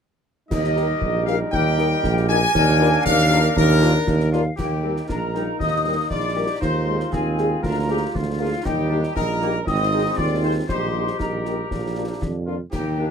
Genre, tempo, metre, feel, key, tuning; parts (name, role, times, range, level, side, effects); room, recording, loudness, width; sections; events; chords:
military-style march for wind band; 118 BPM; 2/4; straight; Eb major; A4 = 440 Hz
clear trumpet section; melody; 0.5-13.1 s; F4 to Ab5; -27 LUFS; left 3 dB
clear woodwind section; second line; 0.5-13.1 s; Bb3 to Bb4; -30 LUFS; left 3 dB
hollow flute section; second line; 0.5-13.1 s; Bb4 to Eb6; -26 LUFS; left 2 dB
warm trombone section; sustained chords; 0.5-13.1 s; Eb3 to F4; -29 LUFS; right 1 dB
warm tuba; bass; 0.5-13.1 s; Ab1 to F2; -22 LUFS; right 3 dB
concert snare drum, clash cymbals and concert bass drum; drums; 0.5-12.9 s; -30 LUFS; left 1 dB
warm French horn section; accompaniment; 0.8-13.1 s; G3 to Bb4; -25 LUFS; left 4 dB
moderate booth ambience, RT60 0.2 s; -18 LUFS; side -7 dB against mid
0.5-4.6 A section; 4.6-13.1 B section
0.5 Eb; 2.5 Bb7/Eb; 4.6 Eb; 6.6 Fm7/Eb; 7.6 Bb7/D; 8.7 Eb; 9.7 Ab; 10.7 Eb/Bb; 11.7 Bb